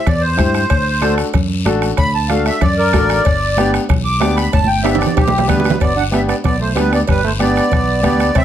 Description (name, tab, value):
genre	latin, cumbia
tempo	188 BPM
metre	4/4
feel	straight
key	G major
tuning	A4 = 440 Hz
part	accordion	melody	0.0-8.4 s	G4 to D6	-18 LUFS	equal	light tremolo tuning
part	fingered electric bass	bass	0.1-8.4 s	G1 to G2	-19 LUFS	equal	none
part	bombo	percussion	0.1-8.4 s	none	-19 LUFS	left 1 dB	none
part	congas	percussion	0.1-8.4 s	none	-24 LUFS	right 4 dB	none
part	cowbell and timbales	percussion	0.1-8.4 s	none	-23 LUFS	right 6 dB	none
part	guiro	percussion	0.1-8.4 s	none	-30 LUFS	left 7 dB	none
part	clear upright piano	accompaniment	0.4-8.3 s	B3 to C5	-20 LUFS	left 3 dB	none
part	bright trombone	second line	5.5-8.4 s	G3 to D4	-21 LUFS	right 6 dB	none
room	light reverb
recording	close, detailed microphones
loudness	-12 LUFS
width	side -10 dB against mid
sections	0.0-5.8 A section; 5.8-8.4 B section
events	accordion solo 0.0-5.8; drum fill 4.5-5.8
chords	0.0 C; 0.7 D; 3.3 G